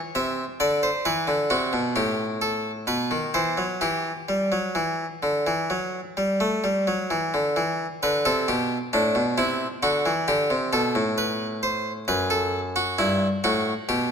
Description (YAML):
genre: classical, baroque-style two-part invention for harpsichord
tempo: 66 BPM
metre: 4/4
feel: straight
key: E minor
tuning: A4 = 437 Hz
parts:
  - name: harpsichord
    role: solo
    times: 0.2-14.1 s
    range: F#2 to E5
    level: -22 LUFS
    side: equal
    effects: none
room: wet concert hall reverb, RT60 2.0 s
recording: none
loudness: -22 LUFS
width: side -7 dB against mid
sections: 0.0-7.6 A section; 7.6-14.1 B section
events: none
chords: 0.2 C; 2.0 Gsus2/A; 2.9 B; 3.8 Em; 9.4 Am/C; 11.2 B5/A; 13.0 Em/G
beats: | 0.15 1.05 1.96 2.88 | 3.81 4.75 5.70 6.63 | 7.57 8.48 9.38 10.28 | 11.17 12.08 12.98 13.89